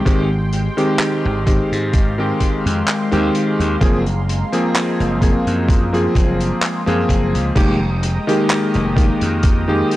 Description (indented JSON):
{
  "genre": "vaporwave",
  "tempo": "64 BPM",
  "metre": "4/4",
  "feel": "swing 53% on 16ths",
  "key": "F minor",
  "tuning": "A4 = 440 Hz",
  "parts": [
    { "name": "lush unison pad", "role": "sustained chords", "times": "0.0-10.0 s", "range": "Ab3 to Eb6", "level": "-27 LUFS", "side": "equal", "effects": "chorus, phaser" },
    { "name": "warm electric grand piano", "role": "accompaniment", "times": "0.1-10.0 s", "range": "Eb3 to Ab4", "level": "-18 LUFS", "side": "equal", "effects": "lush chorus, analog delay" },
    { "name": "slap bass", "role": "bass", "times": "0.1-9.8 s", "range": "F1 to Ab2", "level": "-20 LUFS", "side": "equal", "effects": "tube saturation" },
    { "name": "electronic kick drum", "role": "drums", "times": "0.1-9.6 s", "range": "none", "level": "-16 LUFS", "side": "equal", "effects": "vintage 12-bit sampler grit" },
    { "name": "loose indie drum kit", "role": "drums", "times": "0.1-10.0 s", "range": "crash cymbal, handclaps, hi-hat", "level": "-25 LUFS", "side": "equal", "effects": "vintage 12-bit sampler grit" }
  ],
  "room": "light reverb, small room ambience",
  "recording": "cassette tape",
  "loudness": "-14 LUFS",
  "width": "side -16 dB against mid",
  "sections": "0.0-7.6 A section; 7.6-10.0 B section",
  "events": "none",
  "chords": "0.0 Abmaj7; 3.8 Gbmaj9#11; 7.6 Fm11",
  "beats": "| 0.06 1.00 1.94 2.87 | 3.81 4.75 5.69 6.62 | 7.56 8.50 9.44"
}